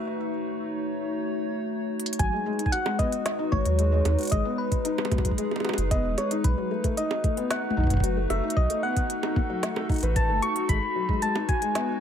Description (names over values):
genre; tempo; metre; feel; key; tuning
IDM; 113 BPM; 4/4; straight; G# phrygian; A4 = 442 Hz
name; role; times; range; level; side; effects
warbly tape-like pad; sustained chords; 0.0-12.0 s; G#3 to C#5; -31 LUFS; left 2 dB; chorus, built-in reverb, sidechain pumping
organic electronic drum kit; drums; 2.0-11.9 s; bongos, hi-hat, snare drum, toms; -31 LUFS; right 1 dB; none
soft struck synth lead; melody; 2.2-12.0 s; B4 to C#6; -29 LUFS; equal; chorus, tape echo
felt-muted upright piano; arpeggios; 2.2-11.9 s; F#3 to B4; -31 LUFS; left 3 dB; tape echo
warm sub bass; bass; 2.2-10.8 s; D#1 to D#2; -26 LUFS; equal; none
electronic kick drum; drums; 2.2-11.6 s; none; -26 LUFS; equal; none
room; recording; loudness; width
light reverb, digital ambience; none; -24 LUFS; side -8 dB against mid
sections
0.0-2.2 A section; 2.2-12.0 B section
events
break 0.1-2.2; drum fill 1.9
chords
0.0 B7 (rootless); 2.2 G#m7; 6.4 B7; 10.7 G#m7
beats
| 0.07 0.60 1.13 1.66 | 2.19 2.73 3.26 3.79 | 4.32 4.85 5.38 5.91 | 6.44 6.97 7.50 8.04 | 8.57 9.10 9.63 10.16 | 10.69 11.22 11.75